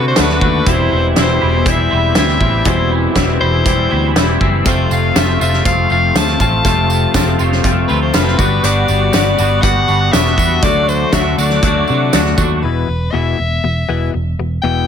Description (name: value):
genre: indie rock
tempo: 120 BPM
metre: 4/4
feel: straight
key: unclear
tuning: A4 = 439 Hz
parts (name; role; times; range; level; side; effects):
- edgy soprano saxophone; melody; 0.0-14.9 s; B4 to A5; -19 LUFS; left 3 dB; analog delay
- twangy electric guitar; riff; 0.0-12.6 s; E2 to F#4; -20 LUFS; right 11 dB; ensemble chorus, analog delay
- twelve-string electric guitar; riff; 0.0-14.9 s; E2 to F#4; -18 LUFS; left 11 dB; none
- picked electric bass; bass; 0.0-14.8 s; E1 to C3; -17 LUFS; right 1 dB; none
- loose indie drum kit; drums; 0.2-12.5 s; hi-hat, kick drum, snare drum; -16 LUFS; right 1 dB; none
- tambourine; percussion; 4.7-12.5 s; none; -29 LUFS; right 13 dB; none
room: light reverb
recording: none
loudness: -11 LUFS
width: side -8 dB against mid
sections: 0.0-12.6 A section; 12.6-14.9 B section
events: none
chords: 0.0 D; 0.7 Cmaj7/E; 4.7 F; 8.4 Gmaj7; 10.6 D; 12.6 E5